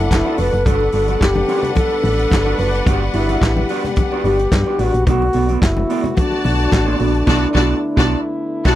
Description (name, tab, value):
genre	disco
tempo	109 BPM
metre	4/4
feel	straight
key	unclear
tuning	A4 = 439 Hz
part	wooden-headed alto flute	melody	0.0-8.8 s	D4 to B4	-20 LUFS	left 1 dB	none
part	clear studio string section	second line	0.0-8.8 s	D4 to A5	-23 LUFS	left 2 dB	none
part	mellow electric guitar	accompaniment	0.0-8.8 s	B3 to D5	-25 LUFS	right 9 dB	none
part	mellow French horn section	sustained chords	0.0-8.8 s	D3 to A4	-25 LUFS	left 2 dB	none
part	solid FM bass	bass	0.0-8.8 s	F1 to G2	-19 LUFS	equal	none
part	vintage drum kit	drums	0.1-8.8 s	crash cymbal, handclaps, hi-hat, kick drum, snare drum	-17 LUFS	equal	none
part	congas	percussion	0.1-6.9 s	none	-26 LUFS	left 4 dB	none
room	little or no reverb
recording	dry, close 1970s-style studio recording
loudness	-14 LUFS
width	side -13 dB against mid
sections	0.0-8.8 A section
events	band accent 7.3-8.8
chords	0.0 Bm7; 0.7 Gmaj7; 5.1 Bm7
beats	0.11 | 0.66 1.21 1.76 2.31 | 2.87 3.42 3.97 4.52 | 5.07 5.62 6.17 6.72 | 7.27 7.83 8.38